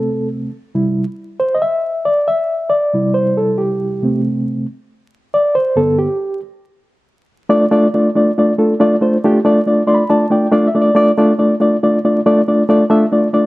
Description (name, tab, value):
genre	soul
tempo	138 BPM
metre	4/4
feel	straight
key	unclear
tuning	A4 = 440 Hz
part	mellow reed electric piano	solo	0.0-13.5 s	G2 to C6	-12 LUFS	equal	fast tremolo
room	moderate spring reverb, RT60 1.4 s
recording	vinyl crackle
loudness	-12 LUFS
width	side -19 dB against mid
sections	0.0-7.5 A section; 7.5-13.5 B section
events	reed electric piano solo 0.0-7.5; reed electric piano fill 9.7-11.0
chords	0.0 Am/C; 0.5 Cadd9; 4.0 Am/C; 5.8 G; 7.5 Dm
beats	0.10 | 0.54 0.98 1.42 1.85 | 2.29 2.73 3.16 3.60 | 4.04 4.47 4.91 5.34 | 5.78 6.21 6.65 7.08 | 7.51 7.95 8.38 8.81 | 9.25 9.68 10.11 10.54 | 10.98 11.41 11.84 12.27 | 12.70 13.14